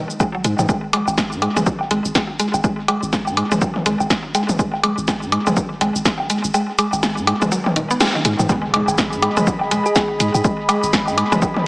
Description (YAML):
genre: minimal techno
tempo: 123 BPM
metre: 4/4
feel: swing 60% on 16ths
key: G# minor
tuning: A4 = 440 Hz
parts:
  - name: punchy sub bass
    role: bass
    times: 0.0-11.4 s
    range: D#1 to G#2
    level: -25 LUFS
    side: equal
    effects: sidechain pumping
  - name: punchy analog drum machine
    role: drums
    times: 0.1-11.5 s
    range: cabasa, hi-hat, snare drum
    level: -22 LUFS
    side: equal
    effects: tape echo
  - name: mallet-like synth pluck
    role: riff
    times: 0.2-11.4 s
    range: D#3 to B3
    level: -21 LUFS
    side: equal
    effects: chorus, sidechain pumping, analog delay
  - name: electronic kick drum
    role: drums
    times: 0.2-11.5 s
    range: none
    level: -23 LUFS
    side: equal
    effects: none
  - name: electronic woodblock and toms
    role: percussion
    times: 0.2-11.6 s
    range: none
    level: -21 LUFS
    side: equal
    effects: tape echo
  - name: impact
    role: sound effects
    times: 8.5-10.4 s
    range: none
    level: -32 LUFS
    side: equal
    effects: none
  - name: airy breathy pad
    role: texture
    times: 8.5-11.7 s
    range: G#4 to B5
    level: -23 LUFS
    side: equal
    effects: chorus, sidechain pumping
  - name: thumb-piano-like synth pluck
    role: melody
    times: 9.9-10.2 s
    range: G#4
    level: -23 LUFS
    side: equal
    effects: chorus, tape echo
room: moderate echo chamber reverb, RT60 1.4 s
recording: echo-heavy mix, small speaker sound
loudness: -16 LUFS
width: side -26 dB against mid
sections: 0.0-8.5 A section; 8.5-11.7 B section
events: kick drops out 6.5-8.5; band accent 8.0; drop 8.5-11.7; impact 8.5-10.4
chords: 0.0 N.C.; 8.5 G#m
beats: 0.20 | 0.69 1.18 1.66 2.15 | 2.64 3.13 3.62 4.10 | 4.59 5.08 5.57 6.05 | 6.54 7.03 7.52 8.01 | 8.49 8.98 9.47 9.96 | 10.45 10.93 11.42